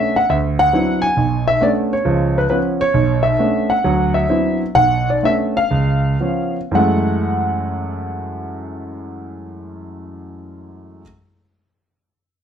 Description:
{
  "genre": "solo jazz",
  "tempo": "114-135 BPM",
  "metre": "4/4",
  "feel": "swing 68% on 8ths",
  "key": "F# minor",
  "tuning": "A4 = 438 Hz",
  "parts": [
    { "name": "warm concert grand piano", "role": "solo", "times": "0.0-11.0 s", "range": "B1 to G#5", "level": "-16 LUFS", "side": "equal", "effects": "none" }
  ],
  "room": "wet studio reverb, RT60 0.8 s",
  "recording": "dark, warm production",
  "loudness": "-15 LUFS",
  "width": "side -8 dB against mid",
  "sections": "0.0-6.7 A section; 6.7-10.9 B section",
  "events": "slowing down 2.9-6.7",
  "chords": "0.3 D13; 1.2 Bm9; 2.0 C#7; 2.9 Bm9; 3.8 D13; 4.8 Bm9; 5.7 C#7; 6.7 F#m9",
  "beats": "0.28 0.72 | 1.16 1.61 2.05 2.49 | 2.94 3.38 3.83 4.29 | 4.75 5.22 5.71 6.21 | 6.72 7.25 7.77 8.29 | 8.82 9.34 9.86 10.39"
}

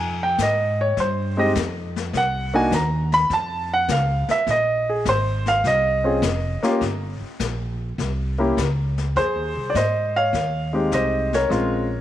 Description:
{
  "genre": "jazz piano trio",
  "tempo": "103 BPM",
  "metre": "4/4",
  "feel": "swing 69% on 8ths",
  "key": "F minor",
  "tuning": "A4 = 440 Hz",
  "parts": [
    { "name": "warm grand piano", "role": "melody", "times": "0.0-12.0 s", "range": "Ab3 to B5", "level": "-20 LUFS", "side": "equal", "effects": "none" },
    { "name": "upright bass", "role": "bass", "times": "0.0-12.0 s", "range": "F1 to Ab2", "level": "-25 LUFS", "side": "right 1 dB", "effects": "none" },
    { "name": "jazz brush drum kit", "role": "drums", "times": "0.4-12.0 s", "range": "brushed snare drum, hi-hat, kick drum, snare drum", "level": "-30 LUFS", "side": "left 8 dB", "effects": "none" }
  ],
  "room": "light reverb, studio ambience",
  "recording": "1960s-style stereo",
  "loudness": "-19 LUFS",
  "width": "side -12 dB against mid",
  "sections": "0.0-9.2 A section; 9.2-12.0 B section",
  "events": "grand piano solo 0.0-9.2",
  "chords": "0.0 Fm7; 2.1 Cm7b5; 3.3 Dbaug; 4.5 Bb7sus2; 6.8 Gm; 8.0 C5; 9.2 Fm9; 11.5 Bbm9",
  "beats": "0.39 0.97 1.56 | 2.14 2.72 3.31 3.89 | 4.47 5.06 5.64 6.23 | 6.81 7.40 7.98 8.57 | 9.15 9.74 10.33 10.91 | 11.50"
}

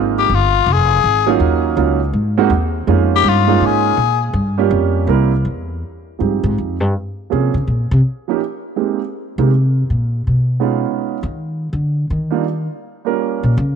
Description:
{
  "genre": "jazz, small-group swing and bop",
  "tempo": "163 BPM",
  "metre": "4/4",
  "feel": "swing 66% on 8ths",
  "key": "unclear",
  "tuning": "A4 = 444 Hz",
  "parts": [
    { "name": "warm grand piano", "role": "accompaniment", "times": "0.0-13.5 s", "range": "F3 to Bb4", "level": "-18 LUFS", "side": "right 11 dB", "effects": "none" },
    { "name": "upright bass", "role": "bass", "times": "0.0-13.8 s", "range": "F1 to Eb3", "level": "-16 LUFS", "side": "left 1 dB", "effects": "none" },
    { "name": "growling tenor saxophone", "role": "melody", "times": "0.2-4.2 s", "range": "F4 to Ab4", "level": "-16 LUFS", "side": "left 13 dB", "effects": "none" }
  ],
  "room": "light reverb, small room ambience",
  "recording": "1960s-style stereo with parts hard left and right",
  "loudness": "-14 LUFS",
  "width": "side -7 dB against mid",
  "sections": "0.0-5.8 A section; 5.8-13.8 A section",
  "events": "tenor saxophone solo 0.0-5.8; upright bass solo 5.8-13.8",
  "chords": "0.0 Ab6; 1.4 Ebm7; 2.1 Ab7; 2.9 Db6; 4.4 Gm7b5; 5.1 C7; 5.8 Fm9; 7.3 Bbm7; 8.0 Eb7; 8.8 Abmaj7; 10.2 Db9; 11.7 Ebmaj7; 13.2 Gm7b5",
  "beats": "0.30 0.67 1.04 | 1.41 1.77 2.14 2.51 | 2.88 3.25 3.62 3.98 | 4.35 4.72 5.09 5.46 | 5.82 6.19 6.56 6.93 | 7.30 7.67 8.03 8.40 | 8.77 9.14 9.51 9.88 | 10.24 10.61 10.98 11.35 | 11.71 12.08 12.45 12.82 | 13.19 13.55"
}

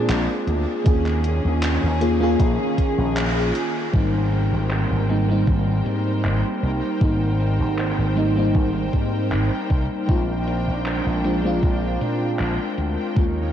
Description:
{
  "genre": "vaporwave",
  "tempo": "78 BPM",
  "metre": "4/4",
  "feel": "straight",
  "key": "Ab major",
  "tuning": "A4 = 440 Hz",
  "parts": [
    { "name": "FM electric piano with soft pad layer", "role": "accompaniment", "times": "0.0-13.5 s", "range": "G3 to Ab4", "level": "-23 LUFS", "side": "equal", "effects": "lush chorus, diffuse ambient delay" },
    { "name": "clear studio string section", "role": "sustained chords", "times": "0.0-13.5 s", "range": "Eb3 to G5", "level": "-29 LUFS", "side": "left 1 dB", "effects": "none" },
    { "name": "slap bass with an envelope filter", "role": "bass", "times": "0.0-13.5 s", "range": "Ab1 to Bb2", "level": "-22 LUFS", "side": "equal", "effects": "tube saturation" },
    { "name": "gated 80s digital drum machine", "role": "drums", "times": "0.1-13.3 s", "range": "handclaps, hi-hat", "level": "-32 LUFS", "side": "equal", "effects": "gated reverb, overdrive, low-pass filter on hats, low-pass filter on snare, low-pass filter on room" },
    { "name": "electronic kick drum", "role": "drums", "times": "0.9-13.3 s", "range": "none", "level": "-20 LUFS", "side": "equal", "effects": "overdrive" }
  ],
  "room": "moderate huge ambient reverb, RT60 7.8 s",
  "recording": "dreamy mix soaked in reverb, cassette tape",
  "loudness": "-19 LUFS",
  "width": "side -10 dB against mid",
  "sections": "0.0-3.9 A section; 3.9-13.5 B section",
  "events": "break 3.2-3.9; band accent 3.2-3.6",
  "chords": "0.0 Bb9; 0.9 Eb7sus4; 3.9 Abmaj9; 10.1 Bb9",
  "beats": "0.09 | 0.86 1.63 2.40 3.17 | 3.94 4.71 5.48 6.25 | 7.01 7.78 8.55 9.32 | 10.09 10.86 11.63 12.40 | 13.17"
}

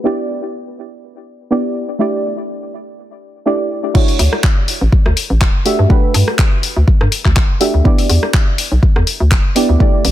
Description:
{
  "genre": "deep house",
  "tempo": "123 BPM",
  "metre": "4/4",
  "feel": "swing 55% on 16ths",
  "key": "unclear",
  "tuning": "A4 = 440 Hz",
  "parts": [
    { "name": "deep mellow chord stab", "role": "stabs", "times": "0.0-10.1 s", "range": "A3 to E5", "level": "-18 LUFS", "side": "right 2 dB", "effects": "chorus, sidechain pumping, ping-pong delay" },
    { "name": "deep house drum kit", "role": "drums", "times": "3.9-10.1 s", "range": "crash cymbal, handclaps, hi-hat, rim click", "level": "-19 LUFS", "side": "left 2 dB", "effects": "overdrive" },
    { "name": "electronic kick drum", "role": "drums", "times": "3.9-9.9 s", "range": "none", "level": "-12 LUFS", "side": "equal", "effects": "overdrive" },
    { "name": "hollow knocking FM bass", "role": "bass", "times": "4.2-10.1 s", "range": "D1 to G2", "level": "-13 LUFS", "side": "equal", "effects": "sidechain pumping" }
  ],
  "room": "digital ambience",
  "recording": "dense, heavily limited modern master",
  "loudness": "-12 LUFS",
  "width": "side -13 dB against mid",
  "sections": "0.0-3.9 A section; 3.9-10.1 B section",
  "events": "drop 3.9-10.1",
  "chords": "0.0 Em7; 2.0 A7sus4; 3.9 Dmaj9; 5.7 Gmaj9; 7.9 Em7",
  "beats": "| 0.05 0.54 1.02 1.51 | 2.00 2.49 2.97 3.46 | 3.95 4.44 4.92 5.41 | 5.90 6.39 6.88 7.36 | 7.85 8.34 8.83 9.31 | 9.80"
}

